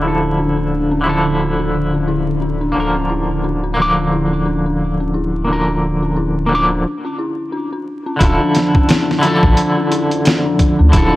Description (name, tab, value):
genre	trip hop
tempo	88 BPM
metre	4/4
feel	swing 59% on 16ths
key	D harmonic minor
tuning	A4 = 440 Hz
part	semi-hollow electric guitar	accompaniment	0.0-11.2 s	D3 to D6	-18 LUFS	equal	tremolo, low-pass filter, tape echo
part	string machine, cellos	sustained chords	0.0-11.2 s	D3 to D4	-21 LUFS	equal	phaser, ensemble chorus
part	dark detuned synth bell	arpeggios	0.0-11.2 s	C#4 to E4	-22 LUFS	left 2 dB	chorus, low-pass filter, tape echo
part	warm sub bass	bass	0.0-11.1 s	D1 to D2	-20 LUFS	equal	none
part	trip hop sampler-style drum kit	drums	8.2-11.1 s	hi-hat, kick drum, snare drum	-15 LUFS	equal	studio reverb
room	little or no reverb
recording	dry, gritty hardware recording, vinyl crackle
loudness	-14 LUFS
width	side -16 dB against mid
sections	0.0-8.2 A section; 8.2-11.2 B section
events	break 6.8-8.2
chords	0.0 Dmadd9; 2.8 Bb/D; 8.2 Dmadd9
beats	| 0.03 0.71 1.39 2.07 | 2.75 3.44 4.12 4.80 | 5.48 6.16 6.84 7.53 | 8.21 8.89 9.57 10.25 | 10.94